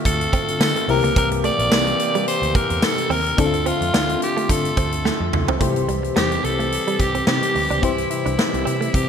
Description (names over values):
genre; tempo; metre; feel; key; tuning
1980s-style pop; 108 BPM; 4/4; swing 55% on 16ths; unclear; A4 = 440 Hz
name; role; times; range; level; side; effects
FM electric piano with tremolo; accompaniment; 0.0-9.1 s; C3 to C5; -25 LUFS; left 6 dB; none
mellow woodwind section; sustained chords; 0.0-9.1 s; D3 to G4; -28 LUFS; equal; none
raspy alto saxophone; melody; 0.1-9.1 s; E4 to D5; -22 LUFS; equal; ping-pong delay
vintage muted picked electric bass; bass; 0.1-9.1 s; Bb1 to D3; -26 LUFS; right 1 dB; none
big rock drum kit; drums; 0.1-9.1 s; hi-hat, kick drum, snare drum, tambourine, toms; -22 LUFS; equal; none
direct-recorded clean electric guitar; riff; 0.3-8.9 s; G3 to D4; -28 LUFS; right 7 dB; analog chorus, ping-pong delay
room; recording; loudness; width
moderate plate reverb, RT60 1.6 s; bright 1980s-style digital production; -17 LUFS; side -7 dB against mid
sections
0.0-5.6 A section; 5.6-9.1 B section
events
drum fill 5.1-5.6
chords
0.0 Dm7; 0.9 C7; 3.4 Dm7; 5.6 C